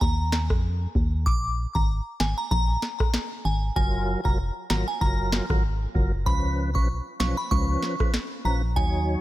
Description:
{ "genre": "dancehall", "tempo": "96 BPM", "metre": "4/4", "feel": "swing 56% on 16ths", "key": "unclear", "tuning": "A4 = 440 Hz", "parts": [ { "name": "glassy synth bell", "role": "melody", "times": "0.0-9.0 s", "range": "Ab5 to D6", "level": "-30 LUFS", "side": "right 1 dB", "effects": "chorus, ping-pong delay" }, { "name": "organ-like FM bass", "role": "bass", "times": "0.0-9.2 s", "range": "F1 to F2", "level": "-26 LUFS", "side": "equal", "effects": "none" }, { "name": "booming analog drum machine", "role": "drums", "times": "0.0-9.0 s", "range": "kick drum, rim click, snare drum", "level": "-26 LUFS", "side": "equal", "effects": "none" }, { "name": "percussive tonewheel organ", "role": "accompaniment", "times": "3.8-9.2 s", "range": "F3 to Db5", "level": "-30 LUFS", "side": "equal", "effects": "overdrive, chorus vibrato, slow rotary speaker" } ], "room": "digital ambience", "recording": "none", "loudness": "-22 LUFS", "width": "side -16 dB against mid", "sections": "0.0-9.2 A section", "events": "none", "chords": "0.0 Db69 (rootless); 1.3 Absus2; 3.8 Gbmaj7; 6.3 Db7" }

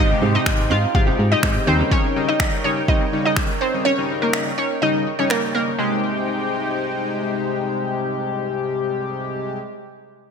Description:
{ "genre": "dance-pop", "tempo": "124 BPM", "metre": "4/4", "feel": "straight", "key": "Ab major", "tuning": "A4 = 439 Hz", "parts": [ { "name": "glassy wavetable pluck", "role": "melody", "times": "0.0-7.2 s", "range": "Ab3 to F5", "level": "-21 LUFS", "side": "equal", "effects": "chorus, sidechain pumping, ping-pong delay" }, { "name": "warm analog pad", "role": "sustained chords", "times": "0.0-9.6 s", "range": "Ab3 to G5", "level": "-27 LUFS", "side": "equal", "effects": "chorus, sidechain pumping" }, { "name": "direct-recorded clean electric guitar", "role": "riff", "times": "0.0-1.9 s", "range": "Bb3 to G4", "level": "-28 LUFS", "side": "right 7 dB", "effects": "analog chorus" }, { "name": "solid FM bass", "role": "bass", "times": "0.0-1.8 s", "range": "Ab1 to Ab2", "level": "-20 LUFS", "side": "equal", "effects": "sidechain pumping" }, { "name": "downlifter", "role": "sound effects", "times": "0.0-1.9 s", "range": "none", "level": "-35 LUFS", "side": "equal", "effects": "none" }, { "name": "chorused polysynth", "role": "accompaniment", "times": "0.1-9.6 s", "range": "C3 to G4", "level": "-25 LUFS", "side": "left 3 dB", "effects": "sidechain pumping" }, { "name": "deep house drum kit", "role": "drums", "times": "0.5-5.4 s", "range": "finger snaps, kick drum", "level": "-21 LUFS", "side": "equal", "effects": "gated reverb" } ], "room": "moderate lush hall reverb, RT60 1.9 s, digital ambience", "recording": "bright 1980s-style digital production", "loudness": "-18 LUFS", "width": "side -6 dB against mid", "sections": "0.0-5.8 A section; 5.8-9.7 B section", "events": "none", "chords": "0.0 Abmaj7; 1.7 Eb7; 5.8 Abmaj7" }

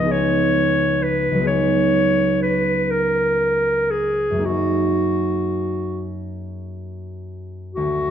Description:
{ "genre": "classical, impressionist duo for clarinet and harp", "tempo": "35-45 BPM (dotted quarters)", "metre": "6/8", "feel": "rubato", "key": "Gb major", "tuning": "A4 = 442 Hz", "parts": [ { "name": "clear clarinet", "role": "melody", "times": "0.0-8.1 s", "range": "Gb4 to Eb5", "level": "-20 LUFS", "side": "left 1 dB", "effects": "none" }, { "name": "concert harp", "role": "accompaniment", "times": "0.0-8.1 s", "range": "Db2 to Ab4", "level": "-21 LUFS", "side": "right 2 dB", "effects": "none" } ], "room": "moderate recital hall reverb, RT60 1.4 s", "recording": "none", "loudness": "-17 LUFS", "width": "side -9 dB against mid", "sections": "0.0-7.8 A section", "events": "none", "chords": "0.0 Db9; 1.5 Db9sus4; 4.5 Gb69" }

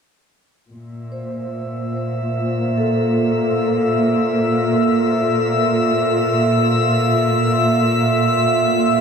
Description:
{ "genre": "ambient", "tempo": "free time", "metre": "none", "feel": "none", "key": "unclear", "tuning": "A4 = 441 Hz", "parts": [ { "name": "warm symphonic cello section", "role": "bass", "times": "0.7-9.0 s", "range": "Bb2", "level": "-20 LUFS", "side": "equal", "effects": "none" }, { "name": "organ-like drone", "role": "drone", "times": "1.9-9.0 s", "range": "Bb3 to F4", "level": "-22 LUFS", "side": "right 2 dB", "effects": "ensemble chorus, built-in reverb" }, { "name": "drifting glass-harmonics texture", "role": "texture", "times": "1.5-9.0 s", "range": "E5 to E6", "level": "-20 LUFS", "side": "equal", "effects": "chorus, built-in reverb" }, { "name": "vibraphone with medium hard mallets", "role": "arpeggios", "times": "1.1-9.0 s", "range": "A4 to C5", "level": "-24 LUFS", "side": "left 2 dB", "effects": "ping-pong delay" } ], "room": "wet cathedral reverb, RT60 6.7 s", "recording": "dark, warm production", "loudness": "-15 LUFS", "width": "side -6 dB against mid", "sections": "0.7-9.0 A section", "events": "fade-in on vibraphone 0.7-9.0; fade-out on synth drone 0.7-9.0", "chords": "0.7 Bbsus2" }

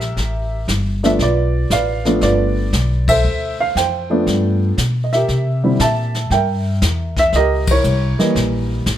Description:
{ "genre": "jazz piano trio", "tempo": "117 BPM", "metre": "4/4", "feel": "swing 68% on 8ths", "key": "unclear", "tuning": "A4 = 439 Hz", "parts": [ { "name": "dark baby grand piano", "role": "melody", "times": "0.0-8.8 s", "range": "D3 to A5", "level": "-17 LUFS", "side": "right 1 dB", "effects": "plate reverb" }, { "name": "upright bass", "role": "bass", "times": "0.0-9.0 s", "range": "G1 to C3", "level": "-18 LUFS", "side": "equal", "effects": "none" }, { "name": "jazz brush drum kit", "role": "drums", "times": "0.0-9.0 s", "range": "brushed snare drum, hi-hat, kick drum, ride cymbal, snare drum", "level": "-23 LUFS", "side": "left 2 dB", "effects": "none" } ], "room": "light reverb", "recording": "none", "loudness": "-14 LUFS", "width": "side -11 dB against mid", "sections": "0.0-9.0 A section", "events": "band accent 3.0, 7.6", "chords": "0.0 C7 (rootless); 1.2 G7; 3.2 Dm7; 4.3 G7; 5.3 C7; 7.3 C#dim7" }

